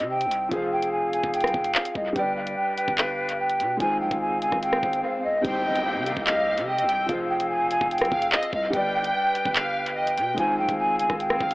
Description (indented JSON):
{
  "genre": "hip hop, drill",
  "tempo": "146 BPM",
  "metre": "4/4",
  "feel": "half-time",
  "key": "C harmonic minor",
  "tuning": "A4 = 439 Hz",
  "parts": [
    { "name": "breathy mellow jazz flute", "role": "melody", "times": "0.0-11.5 s", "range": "C5 to Ab5", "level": "-25 LUFS", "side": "equal", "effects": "low-pass filter, dub echo" },
    { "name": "clear grand piano", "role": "accompaniment", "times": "0.0-11.5 s", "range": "C3 to D5", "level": "-31 LUFS", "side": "equal", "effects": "low-pass filter, dub echo" },
    { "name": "breathy flute section", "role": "sustained chords", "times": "0.0-11.5 s", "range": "C4 to G5", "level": "-31 LUFS", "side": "equal", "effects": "none" },
    { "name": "long sustained 808-style bass", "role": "bass", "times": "0.0-11.5 s", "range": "F1 to C3", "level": "-37 LUFS", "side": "equal", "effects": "none" },
    { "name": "drill drum kit", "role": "drums", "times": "0.0-11.5 s", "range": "handclaps, hi-hat, kick drum, rim click", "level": "-29 LUFS", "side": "equal", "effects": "overdrive, dub echo" },
    { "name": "swell and downlifter", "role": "sound effects", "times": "4.3-8.7 s", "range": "none", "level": "-36 LUFS", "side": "equal", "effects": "none" },
    { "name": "warm symphonic violin section", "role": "second line", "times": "5.4-11.5 s", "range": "Eb5 to G5", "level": "-29 LUFS", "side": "equal", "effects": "dub echo" }
  ],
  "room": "light reverb, small room ambience",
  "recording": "echo-heavy mix, AM radio sound",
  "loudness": "-22 LUFS",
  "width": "side -21 dB against mid",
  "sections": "0.0-5.4 A section; 5.4-11.5 B section",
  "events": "swell 4.3-5.4; drums muted 5.0-5.4",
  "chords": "0.0 Cm; 0.5 Fm; 2.2 G; 3.8 Ab6; 5.4 Cm; 7.1 Fm; 8.7 G; 10.4 Ab6"
}